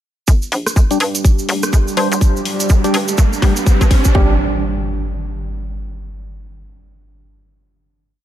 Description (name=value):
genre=bass house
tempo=124 BPM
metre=4/4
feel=swing 60% on 16ths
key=G minor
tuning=A4 = 439 Hz
part: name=dark analog pad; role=sustained chords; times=1.0-4.4 s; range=G3 to G4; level=-23 LUFS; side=right 3 dB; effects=chorus, phaser, sidechain pumping
part: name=hollow knocking FM bass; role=bass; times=0.3-4.4 s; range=F1 to G2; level=-20 LUFS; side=equal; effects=sidechain pumping, high-pass filter
part: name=electronic kick drum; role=drums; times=0.3-4.3 s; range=none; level=-12 LUFS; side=equal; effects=none
part: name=garage drum kit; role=drums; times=0.3-4.1 s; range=hi-hat, rim click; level=-24 LUFS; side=left 2 dB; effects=none
part: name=tube shaker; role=percussion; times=0.3-4.1 s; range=none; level=-24 LUFS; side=right 4 dB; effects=none
part: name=riser and impact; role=sound effects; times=1.8-6.1 s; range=none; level=-24 LUFS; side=right 1 dB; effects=none
part: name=percussive organ stab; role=stabs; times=0.9-4.3 s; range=G3 to C5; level=-21 LUFS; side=left 2 dB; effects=chorus, phaser, vintage 12-bit sampler grit, sidechain pumping, digital delay
room=little or no reverb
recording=none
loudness=-13 LUFS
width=side -12 dB against mid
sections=0.3-4.2 build; 4.2-6.1 final chord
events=build-up 0.3-4.2; filter sweep on synth stab 0.3-4.2; riser 1.8-4.2; drum fill 2.2-4.2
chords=0.3 G5